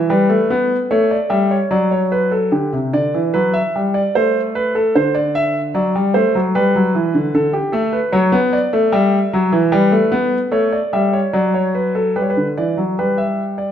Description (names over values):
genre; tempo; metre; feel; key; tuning
classical, baroque-style two-part invention for grand piano; 74 BPM; 3/4; straight; G major; A4 = 445 Hz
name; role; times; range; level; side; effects
warm concert grand piano; solo; 0.0-13.7 s; C3 to E5; -14 LUFS; equal; none
room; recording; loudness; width
moderate recital hall reverb, RT60 1.4 s; none; -14 LUFS; side -9 dB against mid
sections
0.0-2.5 A section; 2.5-12.2 B section; 12.2-13.7 C section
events
none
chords
0.1 A7/G; 1.7 D/F#; 2.5 G5; 4.1 Am; 4.9 D7; 6.5 G; 7.3 D5; 8.9 Em/G; 9.7 A7/G; 11.3 D/F#; 12.2 G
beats
| 0.08 0.90 1.70 | 2.52 3.33 4.13 | 4.94 5.74 6.54 | 7.33 8.12 8.92 | 9.72 10.52 11.34 | 12.15 12.97